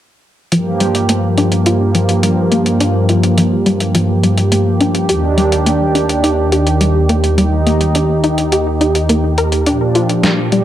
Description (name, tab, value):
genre	synthwave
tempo	105 BPM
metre	4/4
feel	straight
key	G minor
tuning	A4 = 439 Hz
part	brassy analog pad	sustained chords	0.5-10.6 s	Eb2 to G4	-13 LUFS	right 1 dB	chorus
part	soft round pluck	arpeggios	0.5-10.6 s	F3 to Bb4	-17 LUFS	left 2 dB	chorus, tape echo
part	detuned 8-bit digital drum machine	drums	0.5-10.6 s	hi-hat, snare drum	-19 LUFS	left 1 dB	none
room	moderate plate reverb, RT60 1.7 s, digital ambience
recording	dark, warm production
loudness	-11 LUFS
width	side -12 dB against mid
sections	0.5-10.6 A section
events	filter sweep on synth arpeggio sound 0.5-10.6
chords	0.5 Gm7; 5.1 Ebmaj7; 9.7 Bb6